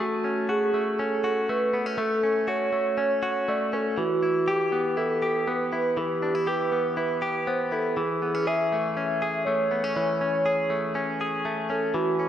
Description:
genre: indie pop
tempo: 120 BPM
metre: 4/4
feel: straight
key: A major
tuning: A4 = 440 Hz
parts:
  - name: warbly nostalgic lead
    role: melody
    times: 0.0-12.3 s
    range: F#4 to E5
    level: -26 LUFS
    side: right 1 dB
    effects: chorus, slapback echo
  - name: direct-recorded clean electric guitar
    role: arpeggios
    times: 0.0-12.3 s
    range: E3 to G#4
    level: -26 LUFS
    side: left 1 dB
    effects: none
room: wet lush hall reverb, RT60 3.1 s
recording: rough home demo mix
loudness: -23 LUFS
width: side -10 dB against mid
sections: 0.0-12.3 A section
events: none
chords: 0.0 A6; 4.0 Em; 8.0 Amaj7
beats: | 0.00 0.50 0.99 1.49 | 1.99 2.48 2.98 3.48 | 3.98 4.48 4.97 5.47 | 5.97 6.47 6.97 7.46 | 7.96 8.46 8.96 9.46 | 9.96 10.46 10.95 11.45 | 11.95

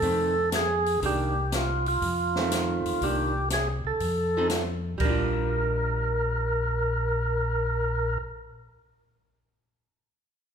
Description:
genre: soul jazz organ trio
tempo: 120 BPM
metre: 4/4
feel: swing 68% on 8ths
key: Bb major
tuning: A4 = 440 Hz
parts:
  - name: percussive tonewheel organ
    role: melody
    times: 0.0-8.2 s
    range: F4 to Bb4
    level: -27 LUFS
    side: right 1 dB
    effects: slow rotary speaker
  - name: archtop guitar, miked and amplified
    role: accompaniment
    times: 0.0-8.3 s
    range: Eb3 to A4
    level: -33 LUFS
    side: right 2 dB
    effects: none
  - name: mellow tonewheel organ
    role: bass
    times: 0.0-8.2 s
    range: Bb1 to F2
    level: -30 LUFS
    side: left 1 dB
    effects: slow rotary speaker
  - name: open jazz drum kit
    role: drums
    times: 0.0-5.2 s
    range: crash cymbal, hi-hat, kick drum, snare drum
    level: -32 LUFS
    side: left 1 dB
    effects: none
room: wet recital hall reverb, RT60 1.5 s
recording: recorded in a church or concert hall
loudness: -24 LUFS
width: side -7 dB against mid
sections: 0.0-5.0 A section; 5.0-9.0 B section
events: none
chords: 0.0 F7; 1.0 Cm9; 2.0 F7; 3.0 Cm9; 4.0 F7; 5.0 Bb6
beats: 0.02 0.52 | 1.02 1.52 2.01 2.51 | 3.01 3.51 4.01 4.51 | 5.01 5.50 6.00 6.50 | 7.00 7.50 8.00

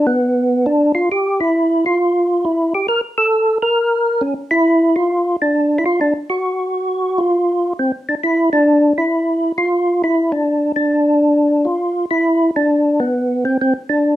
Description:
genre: jazz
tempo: 135 BPM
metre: 4/4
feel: swing 66% on 8ths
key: unclear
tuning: A4 = 441 Hz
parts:
  - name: percussive tonewheel organ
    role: solo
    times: 0.0-14.2 s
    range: B3 to Bb4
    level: -14 LUFS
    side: equal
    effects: slow rotary speaker, chorus vibrato
room: wet studio reverb, RT60 0.6 s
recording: rough home demo mix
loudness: -14 LUFS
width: side -13 dB against mid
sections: 0.0-14.2 A section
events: none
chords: none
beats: 0.19 0.63 | 1.08 1.52 1.97 2.42 | 2.86 3.31 3.75 4.20 | 4.64 5.09 5.54 5.98 | 6.43 6.87 7.32 7.76 | 8.21 8.66 9.10 9.55 | 9.99 10.44 10.89 11.33 | 11.78 12.23 12.67 13.12 | 13.57 14.01

